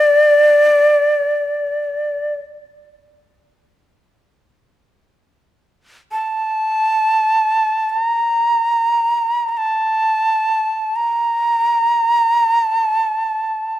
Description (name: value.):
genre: japanese traditional, Japanese chamber music.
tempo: free time.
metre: none.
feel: none.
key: unclear.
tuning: A4 = 439 Hz.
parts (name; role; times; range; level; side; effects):
breathy bright shakuhachi; solo; 0.0-13.8 s; D5 to Bb5; -14 LUFS; equal; none.
room: light reverb.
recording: close, detailed microphones.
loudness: -14 LUFS.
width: side -13 dB against mid.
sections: 0.0-4.4 A section; 4.4-13.8 A section.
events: none.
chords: none.